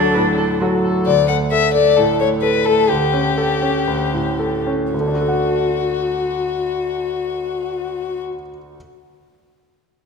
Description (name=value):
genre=quick classical-period movement for piano quartet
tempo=109-133 BPM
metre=4/4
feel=straight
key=D major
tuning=A4 = 439 Hz
part: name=warm violin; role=melody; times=0.0-8.2 s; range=F#4 to F#5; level=-19 LUFS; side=left 7 dB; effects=none
part: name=rich cello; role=second line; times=0.0-0.6 s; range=D4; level=-22 LUFS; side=right 1 dB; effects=none
part: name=bright concert grand piano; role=accompaniment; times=0.0-8.8 s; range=D2 to F#5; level=-19 LUFS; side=right 2 dB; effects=none
part: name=rich viola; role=accompaniment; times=0.1-1.1 s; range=F#4 to B4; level=-29 LUFS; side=right 2 dB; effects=none
room=wet concert hall reverb, RT60 2.3 s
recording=minimal, uncompressed stereo recording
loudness=-16 LUFS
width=side -5 dB against mid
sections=0.0-1.1 A section; 1.1-4.9 B section; 4.9-9.3 C section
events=slowing down 0.1-4.9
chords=0.0 D; 1.1 D5; 2.9 A7/D; 4.9 D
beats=0.14 0.60 | 1.06 1.51 1.97 2.42 | 2.89 3.37 3.87 4.39 | 4.93 5.47 6.02 6.56 | 7.11 7.65 8.20 8.74